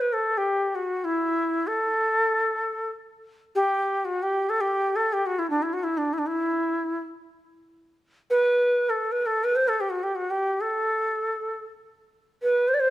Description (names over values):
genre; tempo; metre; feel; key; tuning
Turkish makam ensemble; free time; none; none; A makam huseyni; A4 = 439 Hz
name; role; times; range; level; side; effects
breathy bright ney; solo; 0.0-12.9 s; D4 to D5; -22 LUFS; equal; none
room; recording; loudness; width
moderate recital hall reverb, RT60 1.7 s; none; -23 LUFS; side -14 dB against mid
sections
0.0-12.9 A section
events
none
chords
none